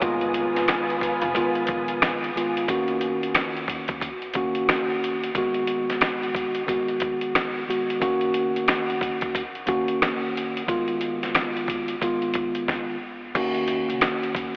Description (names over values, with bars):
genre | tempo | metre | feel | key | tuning
hip hop, boom-bap hip-hop | 90 BPM | 4/4 | swing 60% on 16ths | Eb minor | A4 = 440 Hz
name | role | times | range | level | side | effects
mellow tine electric piano | accompaniment | 0.0-14.6 s | Eb3 to Gb4 | -28 LUFS | equal | high-pass filter, low-pass filter
warm studio string section | sustained chords | 0.0-2.7 s | F4 to Eb6 | -32 LUFS | equal | high-pass filter, low-pass filter
upright bass | bass | 0.0-2.1, 13.4-14.0 s | F1 to Eb2 | -38 LUFS | equal | none
dusty soul sampler-style drum kit | drums | 0.0-14.5 s | crash cymbal, hi-hat, kick drum, rim click, snare drum | -29 LUFS | equal | none
room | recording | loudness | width
wet huge ambient reverb, RT60 6.9 s | dreamy mix soaked in reverb, vinyl crackle, telephone sound, faint mains hum | -25 LUFS | mono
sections
0.0-2.7 A section; 2.7-13.3 B section; 13.3-14.6 A section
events
stop 12.7-13.3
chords
0.0 Fm7b5; 2.7 Ebm7; 5.3 Abm7; 8.0 Gb6; 10.7 Fm7b5; 13.3 Ebm7